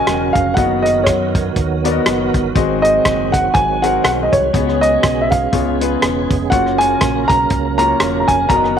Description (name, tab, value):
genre	uptempo gospel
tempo	121 BPM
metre	4/4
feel	swing 57% on 8ths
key	F# major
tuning	A4 = 440 Hz
part	warm baby grand piano	melody	0.0-8.8 s	C#5 to A#5	-16 LUFS	equal	tape echo
part	clear grand piano	accompaniment	0.0-8.8 s	G#2 to D#5	-20 LUFS	left 11 dB	none
part	tonewheel organ	sustained chords	0.0-8.8 s	C#3 to A#4	-21 LUFS	right 12 dB	slow rotary speaker, overdrive, chorus vibrato
part	fingered electric bass	bass	0.1-8.8 s	E1 to F#2	-23 LUFS	equal	none
part	warm soul drum kit	drums	0.1-8.7 s	hi-hat, kick drum, rim click	-19 LUFS	equal	none
room	light reverb, small room reverb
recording	1960s-style stereo with parts hard left and right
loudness	-13 LUFS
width	side -8 dB against mid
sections	0.0-8.8 A section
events	none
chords	0.0 F#maj7; 0.6 Bmaj7/F#; 2.6 G#7; 4.5 C#7sus4; 5.5 C#7; 6.5 F#maj7